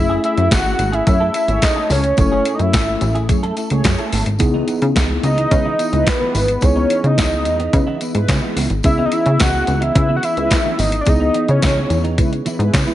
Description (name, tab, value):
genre	early-eighties boogie funk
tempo	108 BPM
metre	4/4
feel	straight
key	C# minor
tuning	A4 = 442 Hz
part	fat analog lead	melody	0.0-12.0 s	B4 to F#5	-19 LUFS	equal	tape echo
part	mellow tine electric piano	accompaniment	0.0-12.9 s	A3 to A4	-23 LUFS	left 2 dB	medium stereo tremolo
part	plucky analog bass	bass	0.0-12.9 s	F#1 to C#3	-18 LUFS	equal	none
part	clean electric guitar	riff	0.1-12.9 s	E3 to A4	-27 LUFS	right 4 dB	ensemble chorus
part	crisp 8-bit digital drum machine	drums	0.2-12.9 s	handclaps, hi-hat, kick drum, snare drum	-18 LUFS	equal	gated reverb
part	tambourine	percussion	0.5-12.9 s	none	-34 LUFS	left 6 dB	none
part	mellow synth brass	second line	1.1-12.9 s	G#3 to C#5	-26 LUFS	right 2 dB	chorus
room	light reverb, digital ambience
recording	nothing above 10.9 kHz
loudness	-14 LUFS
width	side -13 dB against mid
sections	0.0-12.9 A section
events	none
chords	0.0 F#m9; 4.4 C#m9